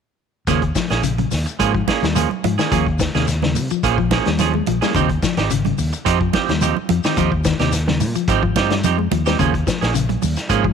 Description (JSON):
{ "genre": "afrobeat", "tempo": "108 BPM", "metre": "4/4", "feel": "straight", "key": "Eb mixolydian", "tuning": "A4 = 440 Hz", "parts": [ { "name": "electric guitar at the edge of break-up", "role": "arpeggios", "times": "0.5-10.7 s", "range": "C3 to Ab3", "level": "-23 LUFS", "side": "left 13 dB", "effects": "none" }, { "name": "clean electric guitar", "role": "stabs", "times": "0.5-10.7 s", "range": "F3 to Ab4", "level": "-22 LUFS", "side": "right 14 dB", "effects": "none" }, { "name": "fingered electric bass", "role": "bass", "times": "0.5-10.7 s", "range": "Ab1 to C3", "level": "-21 LUFS", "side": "equal", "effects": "none" }, { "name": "vintage drum kit", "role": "drums", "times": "0.5-10.7 s", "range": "hi-hat, kick drum, snare drum", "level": "-23 LUFS", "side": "equal", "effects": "none" }, { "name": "congas", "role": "percussion", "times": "0.5-10.7 s", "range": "none", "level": "-24 LUFS", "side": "right 14 dB", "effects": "none" }, { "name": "shekere", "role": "percussion", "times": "0.5-10.6 s", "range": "none", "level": "-29 LUFS", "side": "left 10 dB", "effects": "none" } ], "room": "light reverb, small room ambience", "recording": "1960s-style stereo with parts hard left and right", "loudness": "-16 LUFS", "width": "side -7 dB against mid", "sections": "0.5-10.7 A section", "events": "none", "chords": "0.5 Eb9sus4; 4.9 Dbmaj9#11; 9.4 Eb9sus4", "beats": "| 0.47 1.03 1.59 2.15 | 2.71 3.27 3.83 4.39 | 4.95 5.50 6.06 6.62 | 7.17 7.73 8.29 8.84 | 9.40 9.95 10.51" }